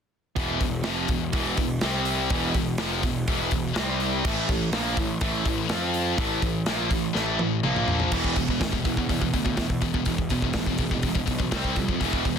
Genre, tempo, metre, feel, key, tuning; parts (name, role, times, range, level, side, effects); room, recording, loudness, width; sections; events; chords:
heavy metal; 124 BPM; 4/4; straight; A4 = 440 Hz
distorted electric guitar; riff; 0.4-12.4 s; E2 to F4; -29 LUFS; right 13 dB; overdrive
heavy high-gain guitar; riff; 0.4-12.4 s; E2 to F4; -28 LUFS; left 13 dB; distortion
fuzz picked electric bass; bass; 0.4-12.4 s; E1 to F2; -31 LUFS; equal; overdrive
modern studio drum kit; drums; 0.4-12.4 s; crash cymbal, hi-hat, kick drum, snare drum, toms; -28 LUFS; equal
little or no reverb; dense, heavily limited modern master; -23 LUFS; side -7 dB against mid
0.4-8.1 A section; 8.1-12.4 B section
drum fill 7.2-8.1
0.4 E5; 1.8 C5; 2.3 E5; 3.8 C5; 4.2 A5; 5.7 F5; 6.2 A5; 7.6 A#5; 8.1 E5; 11.5 C5